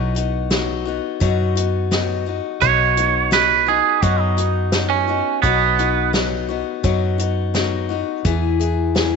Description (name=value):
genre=honky-tonk and classic country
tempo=85 BPM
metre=4/4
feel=straight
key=B major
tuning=A4 = 440 Hz
part: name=picked old ladder-braced acoustic guitar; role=accompaniment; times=0.0-9.2 s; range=B2 to G#4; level=-22 LUFS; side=left 13 dB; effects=none
part: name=vintage muted fingered electric bass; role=bass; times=0.0-9.2 s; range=B1 to F#2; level=-22 LUFS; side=right 1 dB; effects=none
part: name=unplugged drum kit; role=drums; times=0.2-9.1 s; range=hi-hat, kick drum, snare drum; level=-23 LUFS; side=equal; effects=none
part: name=twangy electric guitar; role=second line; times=2.6-6.1 s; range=B3 to C#5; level=-17 LUFS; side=right 14 dB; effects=tape echo
room=light reverb, studio ambience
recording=1960s-style stereo with parts hard left and right, nothing above 7.9 kHz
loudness=-16 LUFS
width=side -5 dB against mid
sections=0.0-9.2 A section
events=none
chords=0.0 B; 8.3 E